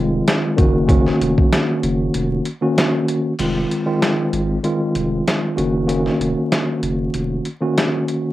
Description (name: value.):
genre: hip hop, boom-bap hip-hop.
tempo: 96 BPM.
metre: 4/4.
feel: swing 55% on 16ths.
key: F phrygian.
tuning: A4 = 435 Hz.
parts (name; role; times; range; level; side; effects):
mellow tine electric piano; accompaniment; 0.0-8.3 s; Eb3 to Gb4; -18 LUFS; equal; medium stereo tremolo, high-pass filter, low-pass filter.
saturated sub bass; bass; 0.0-7.4 s; F1 to Ab1; -23 LUFS; equal; none.
boom bap sampler-style drum kit; drums; 0.3-8.2 s; crash cymbal, hi-hat, kick drum, snare drum; -19 LUFS; equal; cassette tape.
room: light reverb.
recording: home recording on cassette, vinyl crackle.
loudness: -16 LUFS.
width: side -15 dB against mid.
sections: 0.0-3.4 A section; 3.4-8.3 A section.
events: break 2.1-3.4, 3.4-8.3.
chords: 0.0 Fm7; 0.6 Gb6; 3.4 Fm7; 5.6 Gb6.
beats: 0.26 | 0.89 1.51 2.13 2.76 | 3.38 4.01 4.63 5.26 | 5.88 6.51 7.13 7.76.